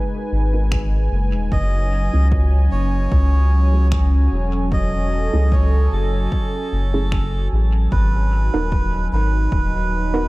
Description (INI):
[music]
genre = ambient dub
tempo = 75 BPM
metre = 4/4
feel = swing 54% on 16ths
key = F# dorian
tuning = A4 = 439 Hz
[part]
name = warm analog pad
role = sustained chords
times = 0.0-10.3 s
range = F#3 to G#5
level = -26 LUFS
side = right 1 dB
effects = chorus
[part]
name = soft dub sub bass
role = bass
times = 0.3-10.3 s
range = D#1 to C#2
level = -17 LUFS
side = equal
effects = tube saturation
[part]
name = filtered dub chord stab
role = stabs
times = 0.5-10.3 s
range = A3 to A#4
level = -29 LUFS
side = right 2 dB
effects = chorus, dub echo
[part]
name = electronic finger snaps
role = drums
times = 0.7-7.3 s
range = none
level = -36 LUFS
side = equal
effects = studio reverb, dub echo
[part]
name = electronic kick drum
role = drums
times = 0.7-9.7 s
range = none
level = -22 LUFS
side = equal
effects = overdrive, studio reverb
[part]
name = melodica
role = melody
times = 1.5-10.3 s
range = A4 to D#5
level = -27 LUFS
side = right 2 dB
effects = dub echo
[sound]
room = digital ambience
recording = dark, warm production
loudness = -16 LUFS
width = side -20 dB against mid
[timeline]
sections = 0.0-10.3 A section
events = filter sweep on synth stab 0.0-10.3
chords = 0.0 G#m7; 1.5 F#m7; 7.9 G#m7